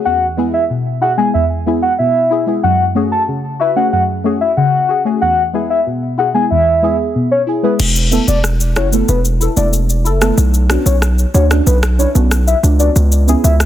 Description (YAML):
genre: dancehall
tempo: 93 BPM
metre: 4/4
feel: straight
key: unclear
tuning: A4 = 440 Hz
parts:
  - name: deep mellow chord stab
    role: accompaniment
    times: 0.0-13.4 s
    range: E2 to B4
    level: -17 LUFS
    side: equal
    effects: chorus
  - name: soft octave-layered synth lead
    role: melody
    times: 0.1-13.5 s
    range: B4 to A5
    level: -16 LUFS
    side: left 1 dB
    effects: chorus, digital delay
  - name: hard-hitting 808-style bass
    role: bass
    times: 7.8-13.7 s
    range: E1 to D2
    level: -12 LUFS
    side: equal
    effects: none
  - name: afro-pop drum kit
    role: drums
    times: 7.8-13.7 s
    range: crash cymbal, rim click, shaker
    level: -20 LUFS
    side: left 1 dB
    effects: none
room: light reverb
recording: dense, heavily limited modern master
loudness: -11 LUFS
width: side -11 dB against mid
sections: 0.0-7.8 A section; 7.8-13.7 B section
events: kick muted 7.8-13.7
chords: 0.1 E; 2.6 F#madd9; 5.2 E; 7.8 Esus4; 10.4 Bmadd9; 13.0 C#m7